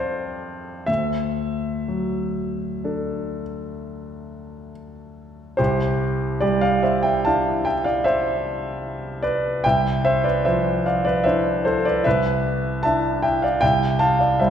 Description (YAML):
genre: classical, impressionist solo piano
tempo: 59-78 BPM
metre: 5/4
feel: rubato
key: C major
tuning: A4 = 445 Hz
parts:
  - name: clear grand piano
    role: solo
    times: 0.0-14.5 s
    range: C2 to A5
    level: -20 LUFS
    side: equal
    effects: none
room: wet scoring stage reverb, RT60 1.7 s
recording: heard from further back in the room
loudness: -19 LUFS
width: side -9 dB against mid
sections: 0.0-5.6 A section; 5.6-14.5 A section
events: none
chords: 0.0 F69; 0.9 Dadd9; 5.6 Cadd9; 13.6 C69